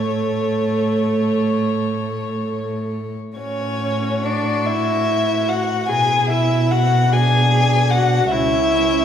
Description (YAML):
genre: classical, slow romantic movement for string quartet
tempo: 42-51 BPM (dotted quarters)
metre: 12/8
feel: rubato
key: A major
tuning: A4 = 439 Hz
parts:
  - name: rich violin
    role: melody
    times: 0.0-9.0 s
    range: C#4 to C#5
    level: -27 LUFS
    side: left 6 dB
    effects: none
  - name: dark violin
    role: second line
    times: 0.0-9.0 s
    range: C#5 to G#5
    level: -21 LUFS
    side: left 4 dB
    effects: none
  - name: warm viola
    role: accompaniment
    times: 0.0-9.0 s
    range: A3 to G#4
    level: -22 LUFS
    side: right 3 dB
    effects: none
  - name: dark cello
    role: bass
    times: 0.0-9.0 s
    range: C#2 to B2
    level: -21 LUFS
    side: right 1 dB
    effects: none
room: wet recital hall reverb, RT60 1.5 s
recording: heard from further back in the room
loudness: -16 LUFS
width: side -8 dB against mid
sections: 0.0-3.4 A section; 3.4-9.0 A section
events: none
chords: 0.0 A; 5.9 E7/B; 8.3 A/C# (rootless)